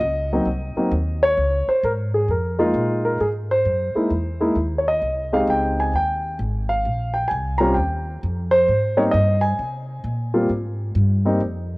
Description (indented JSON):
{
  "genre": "jazz piano trio",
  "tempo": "132 BPM",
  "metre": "4/4",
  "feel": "swing 65% on 8ths",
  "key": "Ab major",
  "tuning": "A4 = 440 Hz",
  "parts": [
    { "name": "warm concert grand piano", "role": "melody", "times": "0.0-11.8 s", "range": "Gb3 to Bb5", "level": "-20 LUFS", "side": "equal", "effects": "cassette tape" },
    { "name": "upright bass", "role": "bass", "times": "0.0-11.8 s", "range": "Ab1 to C3", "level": "-23 LUFS", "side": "equal", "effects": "none" }
  ],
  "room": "light reverb",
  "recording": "home recording on cassette",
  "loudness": "-18 LUFS",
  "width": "side -23 dB against mid",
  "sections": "0.0-11.8 A section",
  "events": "none",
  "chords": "0.5 Cm; 1.4 Db6; 3.2 Caug; 5.0 Abmaj7; 6.8 Bbsus2; 7.8 Ebadd9; 8.7 Abmaj9"
}